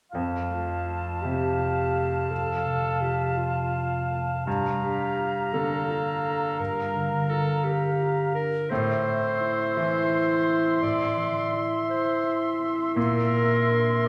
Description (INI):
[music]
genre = cinematic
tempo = 56 BPM (dotted quarters)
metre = 6/8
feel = rubato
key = F major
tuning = A4 = 441 Hz
[part]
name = bright silver concert flute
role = second line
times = 0.1-14.1 s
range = A5 to C6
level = -35 LUFS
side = equal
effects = none
[part]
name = warm oboe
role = second line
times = 0.1-14.1 s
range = E5 to F5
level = -33 LUFS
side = equal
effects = none
[part]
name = bright grand piano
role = accompaniment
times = 0.1-14.1 s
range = F2 to E3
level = -32 LUFS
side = equal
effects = none
[part]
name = concert harp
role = arpeggios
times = 0.1-14.1 s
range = F2 to C5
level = -33 LUFS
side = equal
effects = none
[part]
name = clear clarinet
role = second line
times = 0.5-14.1 s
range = F4 to D5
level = -31 LUFS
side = equal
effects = none
[sound]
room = wet recital hall reverb, RT60 1.6 s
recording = heard from further back in the room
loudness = -26 LUFS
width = mono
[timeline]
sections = 0.1-14.1 A section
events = none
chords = 0.1 Fadd9; 4.5 Gm7; 8.7 Am; 13.0 Bbadd9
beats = | 0.14 1.23 | 2.31 3.39 | 4.46 5.53 | 6.59 7.64 | 8.70 9.76 | 10.82 11.88 | 12.96 14.07